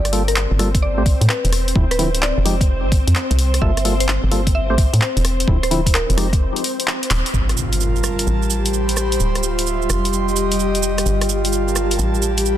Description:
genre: UK garage, two-step garage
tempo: 129 BPM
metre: 4/4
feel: swing 66% on 16ths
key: G dorian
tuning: A4 = 439 Hz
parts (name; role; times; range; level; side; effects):
- mallet-like synth pluck; melody; 0.0-6.2 s; Bb4 to E5; -26 LUFS; equal; chorus, cassette tape, ping-pong delay
- soft string machine; sustained chords; 0.0-12.6 s; G3 to C5; -25 LUFS; equal; ensemble chorus, sidechain pumping
- hollow knocking FM bass; bass; 0.0-12.6 s; D1 to A2; -20 LUFS; equal; sidechain pumping
- percussive organ stab; stabs; 0.1-6.3 s; D3 to C5; -25 LUFS; left 1 dB; chorus, cassette tape, ping-pong delay
- punchy analog drum machine; drums; 0.1-12.6 s; handclaps, hi-hat, rim click, shaker; -22 LUFS; equal; overdrive
- electronic kick drum; drums; 0.7-6.4 s; none; -16 LUFS; equal; none
- impact; sound effects; 7.3-9.2 s; none; -24 LUFS; equal; none
- airy breathy pad; texture; 7.3-12.6 s; F4 to C6; -22 LUFS; right 1 dB; chorus, sidechain pumping
room: light reverb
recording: dense, heavily limited modern master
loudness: -16 LUFS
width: side -12 dB against mid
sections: 0.0-7.3 A section; 7.3-12.6 B section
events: break 6.4-7.3; drum fill 7.1; band accent 7.1; impact 7.3-9.2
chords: 0.0 Gm9; 0.8 Am7; 1.8 Dm9; 2.5 Fm9; 3.6 Gm9; 4.5 Am7; 5.5 Dm9; 6.2 Fm9; 7.3 Gm9; 8.3 Am9; 9.2 Dm9; 9.9 Fsus2; 11.1 Gm9; 12.0 Am9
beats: 0.36 0.83 1.29 | 1.76 2.22 2.69 3.15 | 3.62 4.08 4.55 5.01 | 5.48 5.94 6.41 6.87 | 7.34 7.80 8.27 8.73 | 9.20 9.66 10.13 10.59 | 11.06 11.52 11.99 12.45

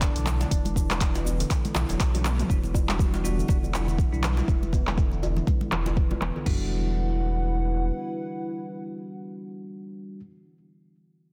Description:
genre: afro house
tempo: 121 BPM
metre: 4/4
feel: swing 57% on 16ths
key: E minor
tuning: A4 = 440 Hz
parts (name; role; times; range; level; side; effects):
- expressive synth lead; melody; 0.0-2.0 s; D4; -41 LUFS; equal; chorus, delay
- warm sub bass; bass; 0.0-7.9 s; E1 to B1; -30 LUFS; equal; sidechain pumping
- afro-pop drum kit; drums; 0.0-6.6 s; crash cymbal, kick drum, toms; -27 LUFS; equal; small room ambience
- deep house drum kit; drums; 0.0-6.4 s; cabasa, handclaps, hi-hat, toms; -34 LUFS; equal; overdrive, low-pass filter on snare, small room ambience, low-pass filter on hats, low-pass filter on perc, low-pass filter on toms
- handpan; arpeggios; 0.2-6.7 s; D3 to B3; -38 LUFS; equal; sidechain pumping, low-pass filter, delay
- congas; percussion; 0.3-6.3 s; none; -38 LUFS; equal; none
- djembe; percussion; 0.4-6.4 s; none; -39 LUFS; equal; none
- dark analog pad; sustained chords; 2.5-10.2 s; E4 to F#5; -38 LUFS; equal; chorus, sidechain pumping
- bell-like tine electric piano; stabs; 2.5-10.2 s; G3 to F#4; -38 LUFS; equal; sidechain pumping, delay
room: light reverb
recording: dense, heavily limited modern master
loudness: -26 LUFS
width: mono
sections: 0.0-2.5 A section; 2.5-6.5 B section; 6.5-10.4 C section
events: drum fill 2.1-2.5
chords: 0.0 Bm/E; 2.5 Em9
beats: 0.02 | 0.51 1.01 1.50 2.00 | 2.50 2.99 3.49 3.98 | 4.48 4.98 5.47 5.97 | 6.46 6.96 7.46 7.95 | 8.45 8.94 9.44 9.94

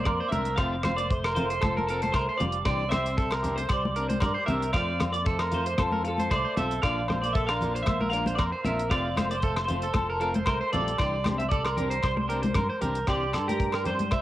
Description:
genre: highlife guitar band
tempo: 115 BPM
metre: 4/4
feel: swing 53% on 16ths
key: C mixolydian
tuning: A4 = 440 Hz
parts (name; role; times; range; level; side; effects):
- clean electric guitar; melody; 0.0-14.2 s; A4 to F5; -31 LUFS; right 1 dB; analog chorus, cassette tape
- mellow alto saxophone; second line; 0.0-14.2 s; F3 to D4; -38 LUFS; left 2 dB; none
- electric guitar at the edge of break-up; arpeggios; 0.0-14.2 s; G4 to E5; -31 LUFS; right 3 dB; none
- fingered electric bass; bass; 0.0-14.2 s; F1 to G2; -33 LUFS; equal; none
- damped 70s drum kit; drums; 0.1-14.2 s; hi-hat, kick drum, rim click; -30 LUFS; equal; cassette tape
- agogo bells; percussion; 0.1-14.2 s; none; -35 LUFS; left 2 dB; none
- electric guitar at the edge of break-up; accompaniment; 0.3-14.0 s; E3 to G4; -37 LUFS; left 4 dB; none
- congas; percussion; 0.3-14.1 s; none; -32 LUFS; left 1 dB; none
room: light reverb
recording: home recording on cassette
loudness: -24 LUFS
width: side -14 dB against mid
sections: 0.0-13.1 A section; 13.1-14.2 B section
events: none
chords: 0.0 Bb; 0.6 F; 2.7 Cadd9; 4.7 F; 6.8 Bb; 8.9 F; 11.0 Csus2; 13.1 Cadd9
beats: 0.07 | 0.59 1.11 1.63 2.15 | 2.67 3.19 3.71 4.23 | 4.75 5.27 5.79 6.31 | 6.83 7.35 7.87 8.39 | 8.91 9.43 9.95 10.47 | 10.99 11.51 12.03 12.55 | 13.07 13.60 14.12

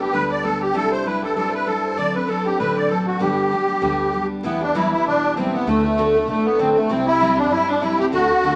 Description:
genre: celtic folk, Celtic reel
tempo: 195 BPM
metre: 4/4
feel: swing 56% on 8ths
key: unclear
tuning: A4 = 440 Hz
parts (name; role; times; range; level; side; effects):
- musette accordion; melody; 0.0-8.6 s; A3 to D5; -22 LUFS; equal; none
- clear fiddle; second line; 0.0-8.6 s; A3 to D5; -33 LUFS; equal; none
- hammered dulcimer; second line; 0.0-8.6 s; A3 to D5; -33 LUFS; equal; none
- picked steel-string acoustic guitar; accompaniment; 0.0-8.6 s; G2 to A4; -25 LUFS; equal; none
- upright bass; bass; 0.0-8.6 s; G1 to G2; -39 LUFS; equal; none
room: wet studio reverb, RT60 0.8 s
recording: vinyl crackle, nothing above 10.6 kHz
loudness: -20 LUFS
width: mono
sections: 0.0-4.4 A section; 4.4-8.6 B section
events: none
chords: 0.0 G; 0.7 Cadd9; 2.0 D7; 3.2 G; 4.4 Em; 5.7 D; 6.9 C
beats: 0.13 0.44 | 0.75 1.06 1.36 1.67 | 1.98 2.29 2.59 2.90 | 3.21 3.52 3.83 4.13 | 4.44 4.75 5.05 5.36 | 5.67 5.98 6.28 6.59 | 6.90 7.21 7.51 7.82 | 8.13 8.44

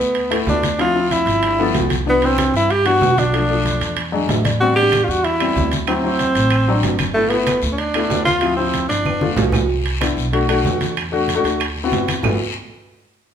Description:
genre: Afro-Cuban jazz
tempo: 189 BPM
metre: 4/4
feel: straight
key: G major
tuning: A4 = 444 Hz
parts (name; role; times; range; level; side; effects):
- breathy tenor saxophone; melody; 0.0-9.5 s; A3 to G4; -17 LUFS; right 1 dB; none
- warm baby grand piano; accompaniment; 0.0-12.4 s; E3 to G#5; -22 LUFS; left 4 dB; none
- upright bass; bass; 0.0-12.4 s; G1 to G2; -23 LUFS; right 1 dB; none
- congas; percussion; 0.0-12.3 s; none; -26 LUFS; left 1 dB; none
- guiro; percussion; 0.0-12.3 s; none; -30 LUFS; left 5 dB; none
- timbales; percussion; 0.1-12.3 s; none; -25 LUFS; right 7 dB; none
- claves; percussion; 4.9-12.3 s; none; -31 LUFS; right 10 dB; none
room: wet large studio reverb, RT60 1.1 s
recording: band playing live in one room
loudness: -15 LUFS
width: side -8 dB against mid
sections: 0.0-9.7 A section; 9.7-12.2 B section; 12.2-13.3 C section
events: grand piano fill 4.0-4.6; drum fill 9.1-9.7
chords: 0.0 Asus24/D; 0.8 Dm7; 1.4 G7; 2.1 Cmaj9; 3.3 Bm7b5; 4.0 E7; 4.6 Am9; 5.9 D7; 7.2 G6; 8.4 Dm7; 9.1 G9; 9.7 Cmaj9; 10.3 Bm7; 11.0 E7sus4; 11.6 D13; 12.2 G6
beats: 0.15 0.47 | 0.79 1.11 1.43 1.75 | 2.06 2.38 2.70 3.02 | 3.34 3.65 3.97 4.29 | 4.61 4.93 5.25 5.56 | 5.88 6.20 6.52 6.83 | 7.15 7.47 7.79 8.11 | 8.43 8.74 9.06 9.38 | 9.70 10.02 10.33 10.65 | 10.97 11.29 11.61 11.92 | 12.24

